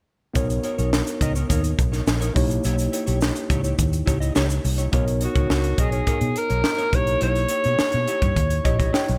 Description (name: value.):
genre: polished 1980s jazz-funk pop.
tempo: 105 BPM.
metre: 4/4.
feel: straight.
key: B major.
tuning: A4 = 436 Hz.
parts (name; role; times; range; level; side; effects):
mellow tine electric piano; accompaniment; 0.3-9.2 s; A#3 to G5; -31 LUFS; equal; subtle chorus.
mellow electric guitar; riff; 0.4-9.1 s; D#4 to D#5; -34 LUFS; equal; analog chorus.
vintage muted fingered electric bass; bass; 0.4-9.2 s; A#1 to B2; -26 LUFS; equal; none.
crisp fusion drum kit; drums; 0.4-9.2 s; hi-hat, kick drum, snare drum; -26 LUFS; equal; none.
tube shaker; percussion; 0.4-4.9 s; none; -41 LUFS; equal; none.
breathy alto saxophone; melody; 5.2-9.2 s; F#4 to C#5; -26 LUFS; equal; none.
room: light reverb, small room ambience.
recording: none.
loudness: -22 LUFS.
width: mono.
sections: 0.4-4.9 A section; 4.9-9.2 B section.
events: tine electric piano fill 8.4-9.2.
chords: 0.4 Bmaj9; 2.4 D#7b9/B; 4.9 Bmaj9; 6.9 D#7b9/B.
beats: | 0.35 0.93 1.50 2.07 | 2.64 3.22 3.79 4.36 | 4.93 5.51 6.08 6.65 | 7.22 7.80 8.37 8.94.